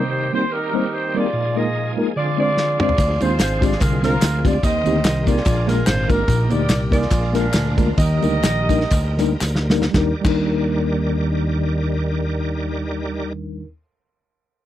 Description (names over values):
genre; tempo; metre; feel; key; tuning
uptempo gospel; 109-146 BPM; 4/4; swing 56% on 8ths; Eb major; A4 = 441 Hz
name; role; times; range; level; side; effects
mellow saxophone section; melody; 0.0-9.4 s; D4 to Eb5; -22 LUFS; right 1 dB; none
mellow tine electric piano; accompaniment; 0.0-13.7 s; Eb2 to C5; -22 LUFS; left 2 dB; medium stereo tremolo
bright tonewheel organ; sustained chords; 0.0-13.3 s; Eb3 to D5; -29 LUFS; right 3 dB; slow rotary speaker, chorus vibrato
warm soul drum kit; drums; 2.6-10.4 s; crash cymbal, kick drum, ride cymbal, snare drum, toms; -20 LUFS; equal; none
fingered electric bass; bass; 3.0-13.6 s; Ab1 to Eb2; -22 LUFS; equal; none
tambourine and handclaps; percussion; 3.0-10.4 s; none; -32 LUFS; left 2 dB; none
room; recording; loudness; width
little or no reverb; dry, close 1970s-style studio recording; -17 LUFS; side -12 dB against mid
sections
0.0-9.9 A section; 9.9-14.3 B section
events
drum fill 2.6-3.0, 9.4-9.9; slowing down 6.3-9.9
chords
0.0 Cm7; 1.3 Bb7sus4; 2.2 Dm7b5; 4.6 Eb6; 5.5 Bb7; 6.3 Eb/Bb; 7.1 Bb7; 8.0 Ebmaj7